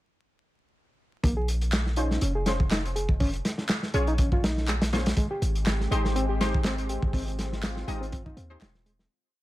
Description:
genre	breakbeat, breaks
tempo	122 BPM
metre	4/4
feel	swing 55% on 16ths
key	Bb dorian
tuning	A4 = 444 Hz
part	reed electric piano	riff	1.2-8.9 s	G3 to Ab4	-33 LUFS	equal	low-pass filter, dub echo
part	warm 808-style bass	bass	1.2-9.1 s	Eb1 to Eb2	-28 LUFS	equal	none
part	crunchy breakbeat drum kit	drums	1.2-9.1 s	hi-hat, kick drum, snare drum	-27 LUFS	equal	none
part	electronic handclaps	drums	1.7-8.7 s	none	-34 LUFS	equal	none
part	orchestra-hit-like synth stab	stabs	2.0-8.6 s	Ab3 to Eb5	-34 LUFS	left 1 dB	built-in reverb, dub echo
part	lush unison pad	sustained chords	5.5-9.1 s	Ab3 to G4	-35 LUFS	equal	chorus, sidechain pumping
room	small room ambience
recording	vinyl crackle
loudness	-24 LUFS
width	side -16 dB against mid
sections	1.2-9.1 groove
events	fade-out 6.5-9.1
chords	1.2 Bbm7; 5.2 Abmaj7

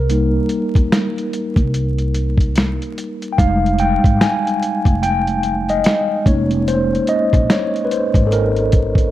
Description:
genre	lo-fi hip hop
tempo	73 BPM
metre	4/4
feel	swing 62% on 16ths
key	unclear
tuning	A4 = 441 Hz
part	mellow tine electric piano	accompaniment	0.0-9.1 s	G3 to Ab5	-18 LUFS	equal	medium stereo tremolo
part	upright bass	bass	0.0-9.1 s	F1 to Eb2	-19 LUFS	equal	none
part	dusty soul sampler-style drum kit	drums	0.1-9.1 s	finger snaps, hi-hat, kick drum, snare drum	-16 LUFS	equal	none
room	light reverb, digital ambience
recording	dark, warm production, vinyl crackle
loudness	-14 LUFS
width	side -14 dB against mid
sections	0.0-3.4 A section; 3.4-9.1 B section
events	tine electric piano solo 0.0-3.4, 3.4-9.1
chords	0.0 Cm7; 3.4 Fm9; 6.3 Bbm7/F

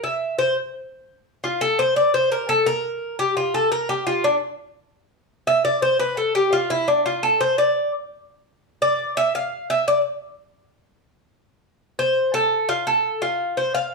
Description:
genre	latin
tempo	170 BPM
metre	4/4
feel	straight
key	F major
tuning	A4 = 440 Hz
part	Cuban tres	solo	0.0-13.9 s	D4 to F5	-19 LUFS	equal	none
room	wet studio reverb, RT60 0.8 s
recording	heard from further back in the room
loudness	-19 LUFS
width	side -3 dB against mid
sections	0.6-11.8 A section; 11.8-13.9 B section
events	Cuban tres solo 0.6-11.8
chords	none

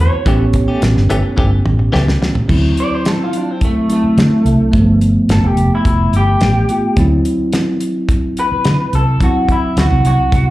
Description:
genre	straight-eighth soul blues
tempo	107 BPM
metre	4/4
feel	straight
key	D mixolydian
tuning	A4 = 440 Hz
part	electric guitar through a small old amp	melody	0.0-10.5 s	A3 to D5	-18 LUFS	equal	wide subtle chorus, slapback echo
part	bell-like tine electric piano	accompaniment	0.0-10.5 s	F3 to G4	-17 LUFS	right 1 dB	slapback echo
part	direct-recorded clean electric guitar	stabs	0.0-2.4 s	E3 to G4	-22 LUFS	left 2 dB	tremolo, slapback echo
part	vintage muted fingered electric bass	bass	0.0-10.5 s	F1 to D3	-14 LUFS	equal	none
part	damped 70s drum kit	drums	0.3-10.5 s	crash cymbal, hi-hat, kick drum, snare drum, toms	-17 LUFS	equal	none
room	light reverb, studio ambience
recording	live gig heard through the venue's PA, club reverb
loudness	-11 LUFS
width	side -16 dB against mid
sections	0.0-2.5 A section; 2.5-10.5 B section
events	drum fill 1.4-2.5; clean electric guitar solo 2.5-10.5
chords	0.3 A7; 2.5 D7; 4.7 G7; 7.0 D7

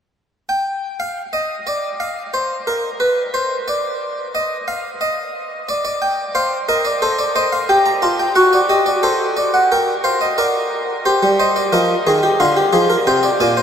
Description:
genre	classical, baroque-style 3-part fugue for harpsichord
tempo	90 BPM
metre	4/4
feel	straight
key	C minor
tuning	A4 = 440 Hz
part	harpsichord	solo	0.5-13.6 s	Bb2 to Bb5	-15 LUFS	equal	none
room	wet huge ambient reverb, RT60 7.9 s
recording	in a vast, echoing space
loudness	-15 LUFS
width	side -8 dB against mid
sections	0.3-11.1 A section; 11.1-13.6 B section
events	none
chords	0.3 N.C.; 5.7 Gm/D; 7.0 Am7b5; 8.4 D7/F#; 9.7 Gm/Bb; 11.1 Cm/G; 12.4 Dm7b5

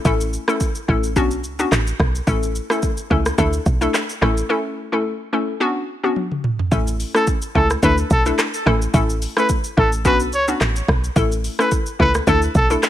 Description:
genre	afrobeats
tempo	108 BPM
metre	4/4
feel	swing 55% on 16ths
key	A major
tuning	A4 = 441 Hz
part	hollow square pluck	accompaniment	0.0-12.9 s	A3 to A4	-21 LUFS	left 2 dB	chorus
part	woody log drum bass	bass	0.1-12.8 s	A1 to D2	-20 LUFS	equal	none
part	afro-pop drum kit	drums	0.1-12.9 s	handclaps, hi-hat, kick drum, rim click, shaker, toms	-21 LUFS	equal	none
part	clear trumpet	melody	7.2-12.7 s	A4 to C#5	-20 LUFS	equal	digital delay
room	little or no reverb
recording	none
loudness	-16 LUFS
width	side -12 dB against mid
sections	0.0-6.7 A section; 6.7-12.9 B section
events	break 4.5-6.7; drum fill 6.2-6.7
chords	0.0 A; 1.2 Bmadd9; 2.3 A; 3.4 Dsus2; 4.2 A; 5.6 Bmadd9; 6.7 A; 7.8 Dsus2; 8.7 A; 10.1 Bmadd9; 11.2 A; 12.3 Dsus2

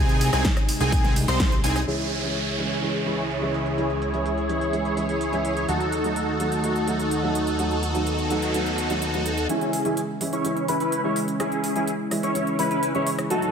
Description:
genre	EDM, festival progressive house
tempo	126 BPM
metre	4/4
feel	straight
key	C# minor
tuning	A4 = 438 Hz
part	lush unison pad	sustained chords	0.0-13.5 s	D#2 to F#4	-31 LUFS	equal	chorus, sidechain pumping
part	wide unison lead	arpeggios	0.0-1.8, 9.5-13.5 s	G#5 to C#6	-29 LUFS	equal	sidechain pumping, ping-pong delay
part	supersaw chords	riff	0.0-13.5 s	B#3 to C#5	-26 LUFS	equal	analog chorus, sidechain pumping, low-pass filter, ping-pong delay
part	fat analog bass	bass	0.0-9.5 s	B#1 to D#2	-29 LUFS	equal	sidechain pumping
part	big-room dance drum kit	drums	0.1-13.5 s	hi-hat, ride cymbal, rim click, snare drum, tambourine	-31 LUFS	right 1 dB	low-pass filter on hats, studio reverb, low-pass filter on perc, low-pass filter on cymbals, low-pass filter on snare
part	electronic kick drum	drums	0.4-1.5 s	none	-22 LUFS	equal	studio reverb
part	dark grand piano	accompaniment	1.9-13.5 s	E3 to F#4	-29 LUFS	right 2 dB	sidechain pumping, ping-pong delay
part	downlifter and noise sweep	sound effects	1.9-9.5 s	none	-33 LUFS	right 3 dB	none
room	light reverb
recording	none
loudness	-22 LUFS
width	side -7 dB against mid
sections	0.0-1.9 A section; 1.9-9.5 B section; 9.5-13.5 C section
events	drop 0.0-1.9; filter sweep on drum 1.9-9.5; filter sweep on supersaw synth 1.9-9.5, 9.5-13.5; filter sweep on analog synth pad 1.9-9.5; noise sweep 8.1-9.5; build-up 9.5-13.5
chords	0.0 G#/B#; 1.9 C#m; 5.7 D#dim; 9.5 C#m

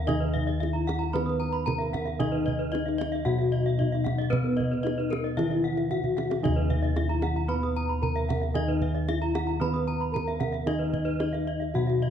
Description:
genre	Balinese gamelan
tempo	113 BPM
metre	4/4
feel	straight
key	Eb pelog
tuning	A4 = 439 Hz
part	gamelan-type bronze metallophone	melody	0.0-12.1 s	Cb4 to Cb5	-30 LUFS	left 2 dB	none
part	gamelan-type bronze metallophone	accompaniment	0.0-12.1 s	Eb3 to Cb4	-34 LUFS	right 3 dB	none
part	gamelan-type bronze metallophone	arpeggios	0.0-12.0 s	Bb4 to Eb6	-37 LUFS	right 7 dB	none
part	gamelan-type bossed gongs	bass	0.0-12.1 s	Eb2 to Cb5	-29 LUFS	left 1 dB	none
part	gamelan-type bronze metallophone	arpeggios	0.1-12.1 s	Bb4 to Cb6	-35 LUFS	left 3 dB	none
part	kendang	percussion	0.1-12.0 s	none	-33 LUFS	right 3 dB	none
room	moderate recital hall reverb, RT60 1.5 s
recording	dark, warm production, nothing above 10.9 kHz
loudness	-25 LUFS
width	side -8 dB against mid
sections	0.0-12.1 A section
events	drum fill 5.9-6.4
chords	none

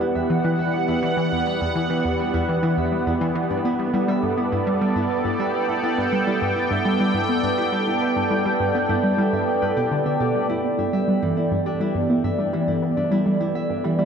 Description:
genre	ambient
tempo	103 BPM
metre	4/4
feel	straight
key	unclear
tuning	A4 = 440 Hz
part	sweeping resonant pad	sustained chords	0.0-14.1 s	B3 to G5	-22 LUFS	right 2 dB	chorus
part	concert harp	arpeggios	0.0-14.1 s	E3 to E5	-29 LUFS	left 1 dB	auto-pan, tape echo
part	analog pluck	riff	0.0-14.1 s	E2 to B3	-24 LUFS	left 1 dB	chorus, tape echo
room	wet lush hall reverb, RT60 2.6 s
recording	dreamy mix soaked in reverb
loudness	-19 LUFS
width	side -7 dB against mid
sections	0.0-14.1 A section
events	none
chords	0.0 Em7; 3.5 Gadd9

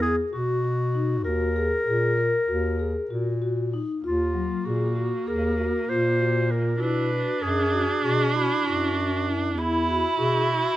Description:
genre	contemporary instrumental, chamber music in an uneven meter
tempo	195 BPM (eighths)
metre	9/8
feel	straight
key	unclear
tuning	A4 = 440 Hz
part	warm clarinet	melody	0.0-10.8 s	Fb4 to C5	-28 LUFS	left 1 dB	none
part	vibraphone with soft mallets	arpeggios	0.0-10.7 s	Gb3 to Bb4	-28 LUFS	left 2 dB	none
part	mellow bass clarinet	bass	0.0-10.7 s	Eb2 to B2	-27 LUFS	equal	none
part	warm viola	second line	4.0-10.8 s	Bb3 to E4	-27 LUFS	right 4 dB	none
room	little or no reverb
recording	close, detailed microphones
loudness	-22 LUFS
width	side -14 dB against mid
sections	0.0-4.0 A section; 4.0-10.8 A section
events	none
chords	0.0 Eadd9; 1.3 Ebm; 4.0 Ebmadd9; 6.8 Bm; 9.6 Eadd9

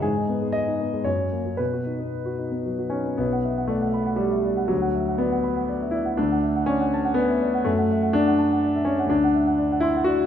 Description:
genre	classical, romantic character piece for solo piano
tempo	110-128 BPM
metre	3/4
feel	rubato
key	B major, B minor from 3.2 s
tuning	A4 = 440 Hz
part	warm grand piano	solo	0.0-10.3 s	B1 to C6	-21 LUFS	left 1 dB	none
room	wet recital hall reverb, RT60 1.6 s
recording	minimal, uncompressed stereo recording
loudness	-21 LUFS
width	side -9 dB against mid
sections	0.0-3.2 A section; 3.2-10.3 B section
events	none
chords	0.0 G#m; 1.1 F#; 1.6 B; 3.2 Bm; 4.7 Bm/D; 6.2 D; 7.7 D/F#; 9.1 D7

